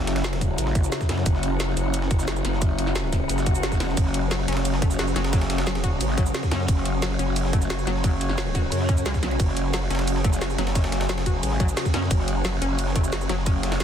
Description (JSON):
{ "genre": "dark technical drum and bass", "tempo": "177 BPM", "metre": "4/4", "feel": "straight", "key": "unclear", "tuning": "A4 = 435 Hz", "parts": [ { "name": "metallic inharmonic drone", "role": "sustained chords", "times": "0.0-13.8 s", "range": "C#3 to C#5", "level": "-28 LUFS", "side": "left 3 dB", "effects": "chorus, built-in reverb, sidechain pumping" }, { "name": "growl bass", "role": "bass", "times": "0.0-13.8 s", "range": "F#1 to F#2", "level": "-26 LUFS", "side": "equal", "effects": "chorus" }, { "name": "granular cloud pad", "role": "texture", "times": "0.0-13.8 s", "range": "C#4 to F#6", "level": "-32 LUFS", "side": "right 2 dB", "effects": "built-in reverb, sidechain pumping" }, { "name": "breakbeat sampler-style drum kit", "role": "drums", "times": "0.1-13.8 s", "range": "ride cymbal, snare drum", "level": "-36 LUFS", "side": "right 1 dB", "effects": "none" }, { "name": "drum and bass drum kit", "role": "drums", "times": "0.1-13.8 s", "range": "hi-hat, ride cymbal, shaker, snare drum", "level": "-30 LUFS", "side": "equal", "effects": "none" }, { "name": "electronic kick drum", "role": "drums", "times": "0.4-13.5 s", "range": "none", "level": "-23 LUFS", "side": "equal", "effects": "none" }, { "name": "swell", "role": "sound effects", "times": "3.4-4.0 s", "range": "none", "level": "-35 LUFS", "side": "equal", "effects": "none" }, { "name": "wide unison pluck", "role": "arpeggios", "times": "4.3-13.8 s", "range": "F#3 to F#4", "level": "-32 LUFS", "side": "left 2 dB", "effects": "sidechain pumping, dub echo" } ], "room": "light reverb", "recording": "dense, heavily limited modern master", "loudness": "-21 LUFS", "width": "side -9 dB against mid", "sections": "0.0-13.8 A section", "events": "swell 3.4-4.0", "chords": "0.0 F#5" }